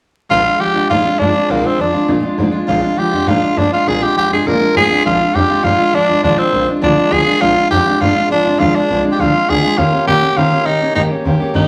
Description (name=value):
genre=rockabilly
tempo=203 BPM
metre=4/4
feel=straight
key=Bb mixolydian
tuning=A4 = 439 Hz
part: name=growling tenor saxophone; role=melody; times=0.3-11.7 s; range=Bb3 to Bb4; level=-16 LUFS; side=equal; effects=none
part: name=picked steel-string acoustic guitar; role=accompaniment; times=0.3-11.7 s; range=Bb2 to G4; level=-19 LUFS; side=equal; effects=none
part: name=upright bass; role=bass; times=0.3-11.6 s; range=Bb1 to Db3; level=-23 LUFS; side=equal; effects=none
room=moderate large studio reverb, RT60 0.8 s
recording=vinyl crackle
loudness=-14 LUFS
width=mono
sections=0.3-5.1 A section; 5.1-11.7 B section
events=none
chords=0.3 Bb7; 9.8 Eb7